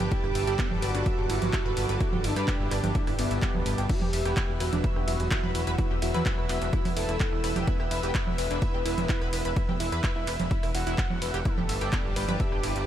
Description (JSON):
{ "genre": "melodic techno", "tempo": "127 BPM", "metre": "4/4", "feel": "straight", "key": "E minor", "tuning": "A4 = 440 Hz", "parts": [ { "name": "fat analog lead", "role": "melody", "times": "0.0-12.9 s", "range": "B3 to F#5", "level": "-34 LUFS", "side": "equal", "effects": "wide subtle chorus, sidechain pumping, ping-pong delay" }, { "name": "lush unison pad", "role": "sustained chords", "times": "0.0-12.9 s", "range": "B4 to E6", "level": "-37 LUFS", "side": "equal", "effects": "chorus, phaser, sidechain pumping" }, { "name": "tight sequenced synth", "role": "arpeggios", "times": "0.0-12.8 s", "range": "B3 to E6", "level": "-35 LUFS", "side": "right 1 dB", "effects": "chorus, sidechain pumping, tape echo" }, { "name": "sync-sweep polysynth", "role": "stabs", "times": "0.0-12.9 s", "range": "E3 to A4", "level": "-37 LUFS", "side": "right 3 dB", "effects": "chorus, vintage 12-bit sampler grit, sidechain pumping, tape echo" }, { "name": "plucky analog bass", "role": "bass", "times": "0.0-12.8 s", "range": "D1 to G2", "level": "-31 LUFS", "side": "equal", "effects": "sidechain pumping" }, { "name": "punchy analog drum machine", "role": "drums", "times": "0.0-12.8 s", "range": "congas, crash cymbal, handclaps, hi-hat, ride cymbal, rim click", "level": "-33 LUFS", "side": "right 3 dB", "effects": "none" }, { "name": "electronic kick drum", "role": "drums", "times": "0.1-12.5 s", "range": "none", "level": "-29 LUFS", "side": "equal", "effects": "none" } ], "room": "light reverb", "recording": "none", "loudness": "-25 LUFS", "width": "side -11 dB against mid", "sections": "0.0-12.9 A section", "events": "none", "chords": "0.0 Gadd9; 3.9 Em; 11.5 Gadd9" }